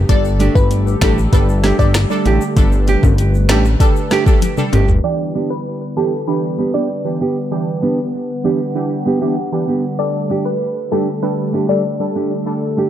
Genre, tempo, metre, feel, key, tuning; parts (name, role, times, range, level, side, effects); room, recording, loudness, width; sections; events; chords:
dancehall; 97 BPM; 4/4; straight; A4 = 440 Hz
hollow soft pad; sustained chords; 0.0-12.9 s; D3 to F#5; -23 LUFS; left 1 dB; chorus, sidechain pumping
fat analog bass; bass; 0.0-5.0 s; G1 to A1; -15 LUFS; equal
glassy wavetable pluck; melody; 0.1-11.8 s; A4 to D5; -23 LUFS; left 3 dB; chorus, analog delay
synth brass stab; accompaniment; 0.1-12.9 s; E3 to A4; -23 LUFS; right 2 dB; chorus, phaser
afro-pop drum kit; drums; 0.1-5.0 s; finger snaps, hi-hat, kick drum, snare drum, toms; -15 LUFS; equal
egg shaker and timbales; percussion; 0.1-5.0 s; -30 LUFS; left 11 dB
nylon-string guitar; arpeggios; 0.4-12.9 s; A3 to G4; -21 LUFS; right 4 dB; analog delay
light reverb; low-pass filter; -14 LUFS; side -11 dB against mid
0.0-5.0 A section; 5.0-12.9 B section
drum fill 4.4-5.0; filter sweep 5.0-12.9
0.1 Gsus2; 5.0 Em7; 10.0 Gsus2